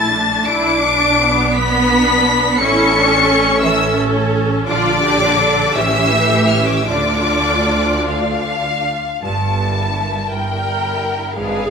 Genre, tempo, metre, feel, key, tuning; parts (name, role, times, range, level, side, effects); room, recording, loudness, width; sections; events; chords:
classical, slow romantic movement for string orchestra; 50-59 BPM (dotted quarters); 6/8; rubato; A4 = 439 Hz
rich studio violin section; melody; 0.0-11.7 s; F5 to D7; -18 LUFS; left 4 dB
rich studio violin section; second line; 0.0-11.7 s; D4 to D6; -20 LUFS; left 3 dB
rich studio viola section; accompaniment; 0.0-11.7 s; A3 to Bb4; -18 LUFS; right 1 dB
bright studio cello section; bass; 0.0-11.7 s; G2 to D4; -20 LUFS; right 1 dB
clear studio double bass section; bass; 0.0-11.7 s; G1 to D2; -22 LUFS; right 3 dB
wet recital hall reverb, RT60 1.6 s; minimal, uncompressed stereo recording; -13 LUFS; side -6 dB against mid
0.0-9.2 A section; 9.2-11.7 B section
0.5 E5/B; 2.6 A; 4.7 Bb; 5.8 A7; 6.9 Dm; 9.2 Edim/G